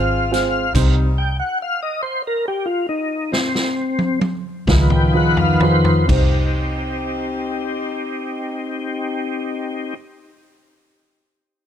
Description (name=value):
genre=slow blues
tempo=42-48 BPM (dotted quarters)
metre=12/8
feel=straight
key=C harmonic minor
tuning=A4 = 440 Hz
part: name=dark grand piano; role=accompaniment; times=0.0-10.0 s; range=C4 to C5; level=-26 LUFS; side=right 4 dB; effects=none
part: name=tonewheel organ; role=sustained chords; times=0.0-9.9 s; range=Eb3 to G5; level=-20 LUFS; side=left 1 dB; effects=slow rotary speaker, chorus vibrato
part: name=warm horn section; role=sustained chords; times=0.0-9.9 s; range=G3 to G4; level=-30 LUFS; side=left 3 dB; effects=none
part: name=vintage muted fingered electric bass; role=bass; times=0.0-9.9 s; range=Ab1 to Db2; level=-19 LUFS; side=equal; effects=none
part: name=vintage drum kit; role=drums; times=0.3-6.3 s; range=crash cymbal, hi-hat, kick drum, snare drum, toms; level=-21 LUFS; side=equal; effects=none
room=light reverb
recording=dark, warm production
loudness=-17 LUFS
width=side -9 dB against mid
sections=0.0-6.1 A section; 6.1-11.7 B section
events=slowing down 0.0-6.1; tonewheel organ solo 0.0-6.1; drum fill 3.3-6.1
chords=0.0 Fm; 0.7 Cm; 4.7 Db7; 6.1 Cm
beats=| 0.74 2.02 3.33 4.68 | 6.09 7.54 8.98